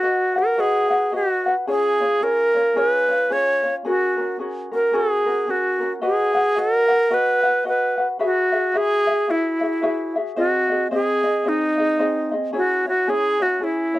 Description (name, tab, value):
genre	Hawaiian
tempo	110 BPM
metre	4/4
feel	swing 61% on 8ths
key	B major, E major from 8.2 s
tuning	A4 = 439 Hz
part	bright reedy alto flute	melody	0.0-14.0 s	D#4 to C#5	-19 LUFS	equal	none
part	ukulele	accompaniment	0.0-14.0 s	B#3 to F#5	-24 LUFS	left 1 dB	none
room	light reverb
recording	dry, close 1970s-style studio recording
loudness	-18 LUFS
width	side -16 dB against mid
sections	0.0-8.2 A section; 8.2-14.0 B section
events	none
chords	0.0 B; 1.7 C#; 3.8 F#add9; 6.0 B; 8.2 Eadd9; 10.4 G#; 12.5 C#m